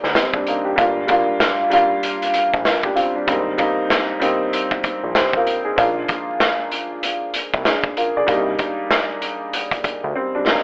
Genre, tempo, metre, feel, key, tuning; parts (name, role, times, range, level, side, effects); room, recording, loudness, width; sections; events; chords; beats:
hip hop, boom-bap hip-hop; 96 BPM; 4/4; swing 61% on 16ths; A4 = 440 Hz
dark upright piano; accompaniment; 0.0-10.6 s; F3 to D5; -22 LUFS; equal; high-pass filter, low-pass filter
fat analog bass; bass; 0.0-10.1 s; G1 to D2; -28 LUFS; equal
raw garage drum kit; drums; 0.0-10.6 s; hi-hat, kick drum, snare drum; -22 LUFS; equal
moderate small room ambience, RT60 0.5 s; vinyl crackle, telephone sound; -19 LUFS; mono
0.0-10.6 A section
drum fill 10.2-10.6
0.0 Cm7; 0.8 Gm7; 3.3 Abmaj7; 5.8 Bb; 8.3 Cm7
0.16 | 0.78 1.41 2.03 2.66 | 3.28 3.91 4.53 5.16 | 5.78 6.41 7.03 7.66 | 8.28 8.91 9.53 10.16